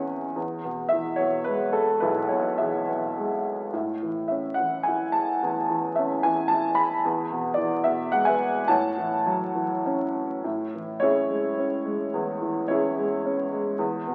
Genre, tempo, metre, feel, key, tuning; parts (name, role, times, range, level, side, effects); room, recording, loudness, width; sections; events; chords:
classical, lyrical solo piano; 108 BPM; 3/4; rubato; A major; A4 = 439 Hz
warm upright piano; solo; 0.0-14.1 s; B1 to B5; -26 LUFS; equal
moderate concert hall reverb, RT60 1.9 s; very old 78 rpm record, vinyl crackle; -26 LUFS; mono
0.0-10.4 A section; 10.4-14.1 B section
0.4 E; 3.7 A; 7.0 E; 8.7 A6; 10.4 Amaj7